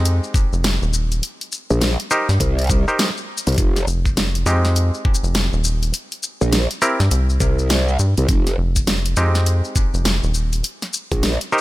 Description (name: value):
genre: glitch hop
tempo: 102 BPM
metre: 4/4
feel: swing 62% on 16ths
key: F minor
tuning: A4 = 441 Hz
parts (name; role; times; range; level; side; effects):
- clav; stabs; 0.0-11.6 s; Ab3 to C5; -23 LUFS; equal; vintage 12-bit sampler grit, sidechain pumping, digital delay
- rubbery square bass; bass; 0.0-10.6 s; Eb1 to G2; -18 LUFS; equal; none
- dubstep drum kit; drums; 0.1-11.6 s; hi-hat, shaker, snare drum; -22 LUFS; equal; small room ambience
- electronic kick drum; drums; 0.3-11.2 s; none; -18 LUFS; equal; small room ambience
- growl bass; bass; 1.7-11.4 s; F1 to C2; -18 LUFS; equal; chorus, tube saturation
room: little or no reverb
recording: none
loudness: -16 LUFS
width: side -18 dB against mid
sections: 0.0-11.6 A section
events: none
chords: 0.0 Fm7; 1.2 Cm7; 3.6 Fm7; 5.9 C7(no3); 8.3 Fm7; 10.6 N.C.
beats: 0.05 0.64 | 1.23 1.82 2.40 2.99 | 3.58 4.17 4.76 5.35 | 5.93 6.52 7.11 7.70 | 8.29 8.88 9.46 10.05 | 10.64 11.23